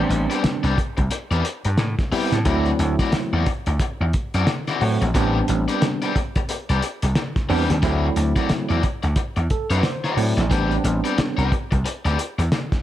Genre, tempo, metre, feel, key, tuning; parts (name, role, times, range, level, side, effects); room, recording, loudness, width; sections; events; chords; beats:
funk; 89 BPM; 4/4; swing 60% on 16ths; A dorian; A4 = 439 Hz
bell-like tine electric piano; stabs; 0.0-11.5 s; F#3 to D5; -24 LUFS; right 2 dB; medium stereo tremolo
vintage slap bass; bass; 0.0-12.5 s; A1 to A2; -21 LUFS; equal
raw garage guitar; accompaniment; 0.1-12.6 s; C4 to D5; -27 LUFS; left 5 dB; overdrive
cloth-damped thuddy drum kit; drums; 0.1-12.8 s; hi-hat, kick drum, snare drum; -24 LUFS; equal
light reverb, small room ambience; dark, warm production; -19 LUFS; side -12 dB against mid
0.0-12.8 A section
tine electric piano fill 9.2-10.5
0.0 Am11; 2.5 D9; 5.1 Am11; 7.8 D9; 10.5 Am11
0.44 1.11 1.79 | 2.46 3.13 3.80 4.48 | 5.15 5.82 6.49 7.16 | 7.83 8.50 9.17 9.84 | 10.51 11.18 11.85 12.52